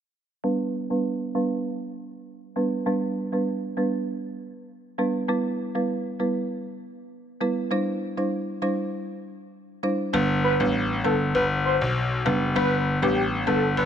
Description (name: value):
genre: dancehall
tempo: 99 BPM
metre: 4/4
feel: straight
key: G major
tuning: A4 = 439 Hz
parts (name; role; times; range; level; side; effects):
- folk marimba with medium mallets; accompaniment; 0.4-13.8 s; G3 to C5; -26 LUFS; right 2 dB; low-pass filter
- bright concert grand piano; bass; 10.1-13.9 s; F#1 to B1; -24 LUFS; left 2 dB; none
- warm velvety synth lead; melody; 10.4-13.9 s; G4 to C5; -26 LUFS; left 2 dB; chorus, ping-pong delay
room: light reverb, small room ambience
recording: none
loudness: -23 LUFS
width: side -8 dB against mid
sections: 0.4-10.1 A section; 10.1-13.9 B section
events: filter sweep on marimba 0.4-10.1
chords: 0.4 G; 5.3 Em; 7.7 Cadd9; 10.1 G